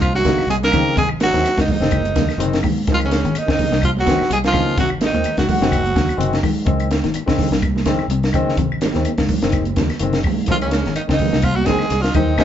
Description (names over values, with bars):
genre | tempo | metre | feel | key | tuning
afrobeat | 126 BPM | 4/4 | swing 56% on 16ths | unclear | A4 = 443 Hz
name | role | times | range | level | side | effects
raspy tenor saxophone | melody | 0.0-6.4, 10.5-12.4 s | Db4 to Bb4 | -21 LUFS | right 1 dB | none
bright bass trombone | second line | 0.0-6.4, 10.5-12.4 s | Db3 to Bb3 | -29 LUFS | right 5 dB | none
mandolin | second line | 0.0-6.4, 10.5-12.4 s | Db5 to Bb5 | -30 LUFS | left 1 dB | none
clean electric guitar | arpeggios | 0.0-12.4 s | Ab2 to Eb3 | -26 LUFS | left 9 dB | phaser
fingered electric bass | bass | 0.0-12.4 s | Gb1 to Db3 | -22 LUFS | right 1 dB | none
compact cocktail drum kit | drums | 0.0-12.4 s | hi-hat, kick drum, snare drum | -21 LUFS | equal | none
claves | percussion | 0.0-12.4 s | none | -35 LUFS | left 6 dB | none
congas | percussion | 0.1-12.4 s | none | -25 LUFS | right 5 dB | none
barky tine electric piano | accompaniment | 0.2-12.4 s | Eb3 to Db4 | -26 LUFS | left 4 dB | phaser
room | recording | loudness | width
moderate large studio reverb, RT60 1.3 s | band playing live in one room, nothing above 7.7 kHz | -15 LUFS | side -10 dB against mid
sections
0.0-12.4 A section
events
none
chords
0.0 Db5; 1.0 Ab7; 2.9 Db5; 4.8 Ab7; 6.7 Db5; 8.6 Ab7; 10.5 Db5